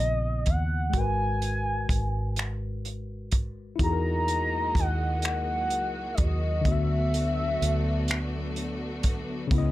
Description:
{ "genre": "slow six-eight R&B", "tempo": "42 BPM (dotted quarters)", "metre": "6/8", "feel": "straight", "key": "unclear", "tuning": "A4 = 441 Hz", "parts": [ { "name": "gliding portamento lead", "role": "melody", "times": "0.0-8.6 s", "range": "D5 to A#5", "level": "-30 LUFS", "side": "equal", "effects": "chorus, slapback echo" }, { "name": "tine electric piano", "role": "accompaniment", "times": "0.0-9.7 s", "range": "C#3 to E5", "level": "-33 LUFS", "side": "left 4 dB", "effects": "auto-pan" }, { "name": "vintage muted fingered electric bass", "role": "bass", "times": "0.0-9.7 s", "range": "G#1 to E2", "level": "-29 LUFS", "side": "equal", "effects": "none" }, { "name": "warm soul drum kit", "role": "drums", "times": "0.5-9.7 s", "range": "finger snaps, hi-hat, kick drum", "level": "-27 LUFS", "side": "equal", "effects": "none" }, { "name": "warm studio string section", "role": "sustained chords", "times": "3.8-9.7 s", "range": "E3 to D#5", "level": "-36 LUFS", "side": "equal", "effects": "none" } ], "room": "light reverb", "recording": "none", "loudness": "-25 LUFS", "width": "side -16 dB against mid", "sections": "0.0-9.7 A section", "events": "none", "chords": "0.0 C#m9; 0.9 G#m9; 3.8 Emaj9#11; 6.7 D69" }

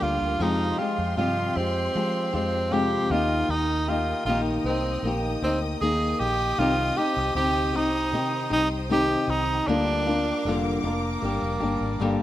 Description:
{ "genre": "acoustic pop", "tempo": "78 BPM", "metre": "4/4", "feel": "straight", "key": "C minor", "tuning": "A4 = 440 Hz", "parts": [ { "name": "breathy tenor saxophone", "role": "melody", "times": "0.0-12.2 s", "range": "Bb3 to Ab4", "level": "-26 LUFS", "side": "right 2 dB", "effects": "none" }, { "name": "flamenco guitar", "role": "accompaniment", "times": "0.0-12.2 s", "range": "F2 to G4", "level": "-26 LUFS", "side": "left 2 dB", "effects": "none" }, { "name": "rich studio string section", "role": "sustained chords", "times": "0.0-12.2 s", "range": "G4 to Eb6", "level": "-35 LUFS", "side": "left 1 dB", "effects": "none" }, { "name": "vintage muted fingered electric bass", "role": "bass", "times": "0.0-12.2 s", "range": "F1 to F3", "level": "-30 LUFS", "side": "equal", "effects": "none" } ], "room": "light reverb, small room ambience", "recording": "rough home demo mix", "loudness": "-22 LUFS", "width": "side -13 dB against mid", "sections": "0.0-12.2 A section", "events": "none", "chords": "0.4 Fmadd9; 3.1 Eb; 6.6 Cm; 9.7 Bb6/D; 11.2 Gm" }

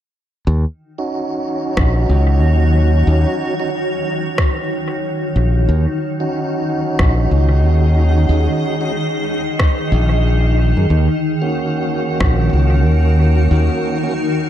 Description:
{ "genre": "ambient dub", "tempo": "92 BPM", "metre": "4/4", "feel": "swing 58% on 16ths", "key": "Eb minor", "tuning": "A4 = 440 Hz", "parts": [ { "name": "granular cloud pad", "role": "sustained chords", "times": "1.3-14.5 s", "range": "Eb3 to Eb5", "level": "-20 LUFS", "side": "equal", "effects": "built-in reverb" }, { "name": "modern bright fingered electric bass", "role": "bass", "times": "0.5-13.7 s", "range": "Bb1 to Gb2", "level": "-13 LUFS", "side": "equal", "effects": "tube saturation" }, { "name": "mellow tonewheel organ", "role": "stabs", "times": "1.0-14.1 s", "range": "Bb3 to Gb4", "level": "-22 LUFS", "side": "right 2 dB", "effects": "fast rotary speaker, dub echo" }, { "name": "electronic kick drum", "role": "drums", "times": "1.8-12.4 s", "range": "none", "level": "-16 LUFS", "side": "equal", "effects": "none" }, { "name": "electronic rim click", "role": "drums", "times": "1.8-12.4 s", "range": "none", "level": "-25 LUFS", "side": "equal", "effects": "dub echo" } ], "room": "light reverb, digital ambience", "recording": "none", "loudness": "-14 LUFS", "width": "side -11 dB against mid", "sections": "0.5-14.5 A section", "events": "none", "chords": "0.5 Ebm7" }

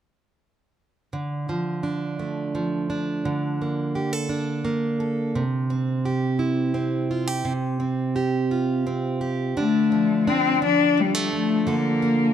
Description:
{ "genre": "six-eight pop ballad", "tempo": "57 BPM (dotted quarters)", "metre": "6/8", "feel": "straight", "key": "D minor", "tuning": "A4 = 438 Hz", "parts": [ { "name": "picked plugged-in steel-string acoustic guitar", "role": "accompaniment", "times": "1.1-12.3 s", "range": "C3 to A4", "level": "-23 LUFS", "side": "right 2 dB", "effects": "none" }, { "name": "clear cello", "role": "melody", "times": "9.6-12.3 s", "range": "G3 to D4", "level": "-20 LUFS", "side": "left 5 dB", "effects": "none" } ], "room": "moderate plate reverb, RT60 2.6 s", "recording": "none", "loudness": "-21 LUFS", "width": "side -9 dB against mid", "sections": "1.1-9.6 A section; 9.6-12.3 B section", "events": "none", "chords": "1.1 Dm; 3.3 Bbmaj7/D; 5.4 C; 7.5 Fsus2/C; 9.6 Dm; 11.7 Bbmaj7/D" }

